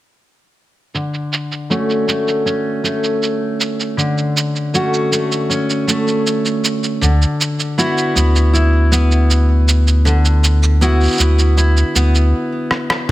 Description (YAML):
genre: folktronica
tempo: 79 BPM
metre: 4/4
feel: straight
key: D major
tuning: A4 = 441 Hz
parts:
  - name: picked steel-string acoustic guitar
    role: arpeggios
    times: 0.9-13.1 s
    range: D3 to F#4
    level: -17 LUFS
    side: equal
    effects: low-pass filter, digital delay
  - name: lo-fi sampler-style drum kit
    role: drums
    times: 0.9-13.1 s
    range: cabasa, crash cymbal, rim click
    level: -19 LUFS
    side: right 3 dB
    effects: low-pass filter on perc, low-pass filter on snare, low-pass filter on cymbals
  - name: warm sub bass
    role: bass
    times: 7.0-13.1 s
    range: D2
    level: -12 LUFS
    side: equal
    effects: none
room: light reverb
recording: none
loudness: -13 LUFS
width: side -16 dB against mid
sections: 0.9-13.1 A section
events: filter sweep on steel-string acoustic guitar 0.9-13.1; break 12.3-13.1; drum fill 12.7-13.1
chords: 0.9 Dmaj7; 7.0 Esus2/D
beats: | 0.94 1.70 2.46 3.22 | 3.98 4.74 5.50 6.26 | 7.02 7.78 8.54 9.29 | 10.05 10.81 11.57 12.33 | 13.09